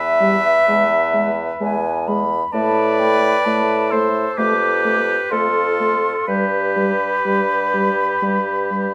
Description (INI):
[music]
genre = classical, slow romantic movement for wind quintet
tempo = 61-66 BPM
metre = 4/4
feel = rubato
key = unclear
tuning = A4 = 440 Hz
[part]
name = mellow silver concert flute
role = melody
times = 0.0-8.9 s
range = E5 to D6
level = -25 LUFS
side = equal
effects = none
[part]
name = warm oboe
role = second line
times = 0.0-8.9 s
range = F4 to B4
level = -25 LUFS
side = equal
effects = none
[part]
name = bright clarinet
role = accompaniment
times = 0.0-8.9 s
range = A4 to E5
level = -23 LUFS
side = equal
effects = none
[part]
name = mellow bassoon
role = bass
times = 0.0-8.9 s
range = E2 to A2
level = -24 LUFS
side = equal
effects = none
[part]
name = mellow French horn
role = accompaniment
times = 0.2-8.9 s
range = G3 to A3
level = -26 LUFS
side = equal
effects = none
[sound]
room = moderate large studio reverb, RT60 0.9 s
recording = none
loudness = -18 LUFS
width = mono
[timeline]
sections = 0.0-8.9 A section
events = none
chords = 0.0 Em; 0.7 E; 2.5 Am11; 4.4 F; 6.3 G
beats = 0.68 1.61 | 2.53 3.46 4.37 5.31 | 6.27 7.24 8.22